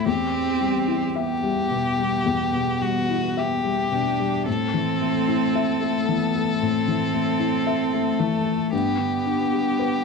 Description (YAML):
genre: neoclassical piano and strings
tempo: 56 BPM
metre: 4/4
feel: rubato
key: unclear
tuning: A4 = 440 Hz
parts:
  - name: rich violin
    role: melody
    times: 0.0-10.0 s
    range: F#4 to A4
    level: -26 LUFS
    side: left 4 dB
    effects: none
  - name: rich cello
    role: second line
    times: 0.0-10.0 s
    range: A3 to D4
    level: -26 LUFS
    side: right 13 dB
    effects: none
  - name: felt-muted upright piano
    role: accompaniment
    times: 0.0-10.0 s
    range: E2 to E5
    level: -24 LUFS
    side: left 9 dB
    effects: none
room: light reverb, studio reverb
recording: 1960s-style stereo with parts hard left and right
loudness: -20 LUFS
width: side -4 dB against mid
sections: 0.0-10.0 A section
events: none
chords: 0.1 Em; 4.5 Am; 8.7 G